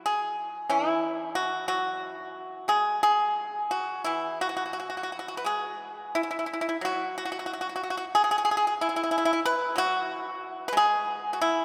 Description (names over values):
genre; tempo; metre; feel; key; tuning
chinese traditional, Chinese solo plucked strings; 85-94 BPM; 4/4; rubato; unclear; A4 = 440 Hz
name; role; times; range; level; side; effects
pipa; solo; 0.0-11.6 s; E3 to B4; -28 LUFS; equal; none
room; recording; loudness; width
wet cathedral reverb, RT60 4.3 s; recorded in a church or concert hall; -28 LUFS; mono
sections
0.0-11.6 A section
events
none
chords
none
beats
| 0.06 0.71 1.36 2.02 | 2.70 3.38 4.07 4.78 | 5.47 6.16 6.85 7.51 | 8.16 8.81 9.46 10.11 | 10.76 11.41